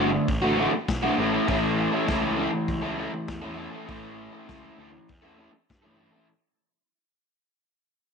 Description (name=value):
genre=garage rock duo or trio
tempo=99 BPM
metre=4/4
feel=straight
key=unclear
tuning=A4 = 439 Hz
part: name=crunchy overdriven guitar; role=riff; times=0.0-6.3 s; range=D2 to A4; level=-25 LUFS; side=equal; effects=none
part: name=fuzz picked electric bass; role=bass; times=0.0-6.1 s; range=G1 to G2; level=-34 LUFS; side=right 1 dB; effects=overdrive
part: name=crunchy breakbeat drum kit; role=drums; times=0.3-5.8 s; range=hi-hat, kick drum, snare drum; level=-31 LUFS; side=left 1 dB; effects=none
room=light reverb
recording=1960s-style stereo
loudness=-23 LUFS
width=side -5 dB against mid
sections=0.0-6.3 A section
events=fade-out 0.0-6.3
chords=0.0 D; 1.2 A